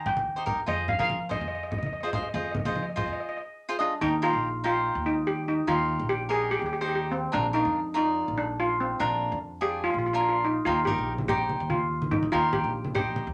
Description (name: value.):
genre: calypso.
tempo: 144 BPM.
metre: 4/4.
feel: straight.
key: Eb major.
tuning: A4 = 440 Hz.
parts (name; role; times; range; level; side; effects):
steel pan; melody; 0.0-13.3 s; C4 to G5; -30 LUFS; equal; none.
cavaquinho; accompaniment; 0.0-13.3 s; D4 to Eb5; -32 LUFS; equal; none.
upright bass; bass; 0.0-13.3 s; Bb1 to F3; -37 LUFS; equal; none.
congas; percussion; 0.1-3.1, 10.9-13.3 s; none; -35 LUFS; equal; none.
room: wet small room ambience, RT60 0.5 s.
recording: none.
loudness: -27 LUFS.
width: mono.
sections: 0.0-4.0 A section; 4.0-13.3 B section.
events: none.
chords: 0.0 Eb; 0.7 Fm7; 4.0 Ebadd9; 7.3 Bb; 10.7 Eb.